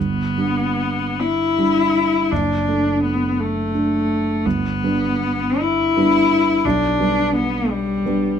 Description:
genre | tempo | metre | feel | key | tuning
classical, romantic duo for cello and grand piano | 47-59 BPM (dotted quarters) | 6/8 | rubato | G major | A4 = 440 Hz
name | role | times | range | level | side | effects
rich cello | melody | 0.0-8.4 s | G3 to E4 | -18 LUFS | left 3 dB | none
warm grand piano | accompaniment | 0.0-8.4 s | F#1 to D4 | -21 LUFS | right 3 dB | none
room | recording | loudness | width
moderate stone room reverb, RT60 1.1 s | close, detailed microphones | -16 LUFS | side -8 dB against mid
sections
0.0-8.4 A section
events
none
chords
0.0 G; 2.3 D/F#; 4.5 G; 6.6 G/B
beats
1.20 | 2.31 3.39 | 4.45 5.59 | 6.65 7.70

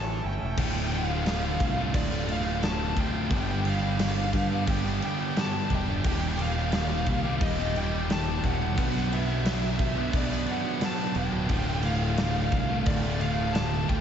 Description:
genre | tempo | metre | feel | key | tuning
quiet-loud alternative rock | 88 BPM | 4/4 | straight | D dorian | A4 = 440 Hz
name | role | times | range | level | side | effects
smooth overdriven lead guitar | melody | 0.0-14.0 s | C#5 to A5 | -33 LUFS | left 1 dB | slapback echo
twangy electric guitar | arpeggios | 0.0-0.6 s | A2 to A4 | -39 LUFS | right 5 dB | slapback echo, tape echo
growling fingered electric bass | bass | 0.0-14.0 s | D1 to G2 | -30 LUFS | equal | overdrive
sludgy distorted guitar | riff | 0.6-14.0 s | D2 to B3 | -35 LUFS | right 2 dB | none
thick fuzz guitar | riff | 0.6-14.0 s | D2 to B4 | -34 LUFS | left 8 dB | distortion, slapback echo
thick fuzz guitar | riff | 0.6-14.0 s | D2 to B4 | -33 LUFS | right 8 dB | distortion
big rock drum kit | drums | 0.6-14.0 s | crash cymbal, kick drum, snare drum | -30 LUFS | equal | none
room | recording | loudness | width
light reverb, small room ambience | nothing above 7.7 kHz | -24 LUFS | side -8 dB against mid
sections
0.6-14.0 A section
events
none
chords
0.0 A7; 0.6 Dm; 3.3 G; 6.0 Eb; 8.8 Bm; 11.5 Dm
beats
| 0.58 1.27 1.95 2.63 | 3.32 4.00 4.68 5.37 | 6.05 6.73 7.41 8.09 | 8.78 9.46 10.14 10.82 | 11.50 12.18 12.87 13.55

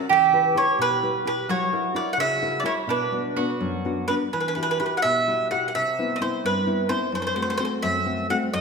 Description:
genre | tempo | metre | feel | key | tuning
italian folk, Italian serenade | 86 BPM (dotted quarters) | 6/8 | rubato | B harmonic minor, E minor from 4.3 s | A4 = 435 Hz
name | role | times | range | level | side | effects
mandolin | second line | 0.0-4.0 s | D4 to G4 | -24 LUFS | right 7 dB | slapback echo
nylon-string guitar | accompaniment | 0.0-8.6 s | F#2 to B4 | -27 LUFS | left 3 dB | none
bowl-back mandolin | melody | 0.1-8.6 s | B4 to F#5 | -24 LUFS | right 1 dB | none
room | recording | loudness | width
wet recital hall reverb, RT60 1.7 s | none | -21 LUFS | side -4 dB against mid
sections
0.0-4.3 A section; 4.3-8.6 B section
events
none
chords
0.1 Em; 1.5 F#7; 2.9 Bm; 4.3 Emadd9; 5.7 Cmaj7; 7.1 F#dim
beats
| 0.10 0.80 | 1.49 2.19 | 2.90 3.61 | 4.33 5.04 | 5.75 6.45 | 7.14 7.83 | 8.53

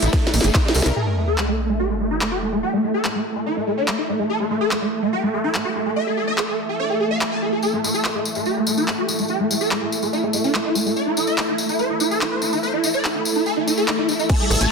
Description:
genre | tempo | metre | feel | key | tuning
psychedelic trance | 144 BPM | 4/4 | straight | unclear | A4 = 442 Hz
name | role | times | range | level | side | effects
swarming rave lead | melody | 0.0-14.7 s | A3 to A5 | -22 LUFS | equal | chorus, phaser, sidechain pumping, tape echo
pulsing gated texture | sustained chords | 0.0-14.7 s | A3 | -26 LUFS | right 2 dB | chorus, built-in reverb, sidechain pumping
wide unison pluck | riff | 0.0-0.9, 14.3-14.7 s | G3 to Bb4 | -26 LUFS | right 1 dB | auto-pan, vintage 12-bit sampler grit, sidechain pumping, digital delay
tight sequencer bass | bass | 0.0-0.9, 14.5-14.7 s | G1 to C2 | -19 LUFS | equal | none
techno drum kit | drums | 0.0-14.7 s | crash cymbal, handclaps, hi-hat, ride cymbal, rim click, snare drum | -25 LUFS | equal | none
tambourine | percussion | 0.0-0.9, 7.6-14.7 s | none | -27 LUFS | left 4 dB | none
deep dark ambient pad | texture | 0.0-14.7 s | E4 to A5 | -29 LUFS | right 1 dB | chorus, built-in reverb, sidechain pumping
electronic kick drum | drums | 0.1-0.6, 14.3-14.4 s | none | -19 LUFS | equal | none
sub drop and swell | sound effects | 1.0-2.6, 13.6-14.3 s | none | -25 LUFS | left 1 dB | none
room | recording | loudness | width
moderate digital room reverb, RT60 1.2 s, digital ambience | dense, heavily limited modern master | -18 LUFS | side -4 dB against mid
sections
1.0-14.3 A section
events
drum fill 0.1-1.0; impact 1.0-2.6; filter sweep on synth texture 1.0-14.3; swell 13.6-14.3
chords
0.0 A5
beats
0.13 0.55 | 0.96 1.38 1.80 2.21 | 2.63 3.05 3.46 3.88 | 4.30 4.71 5.13 5.55 | 5.96 6.38 6.80 7.21 | 7.63 8.05 8.46 8.88 | 9.30 9.71 10.13 10.55 | 10.96 11.38 11.80 12.21 | 12.63 13.05 13.46 13.88 | 14.30 14.71

